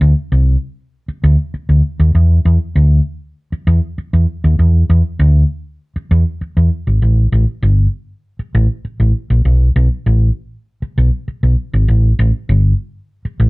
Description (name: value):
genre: funk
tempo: 99 BPM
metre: 4/4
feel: straight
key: unclear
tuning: A4 = 440 Hz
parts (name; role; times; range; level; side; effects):
- hollow-body short-scale fingered electric bass; solo; 0.0-13.5 s; G1 to E2; -11 LUFS; equal; none
room: moderate club reverb, RT60 0.5 s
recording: none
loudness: -12 LUFS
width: side -25 dB against mid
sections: 0.0-7.0 A section; 7.0-13.5 B section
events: none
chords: none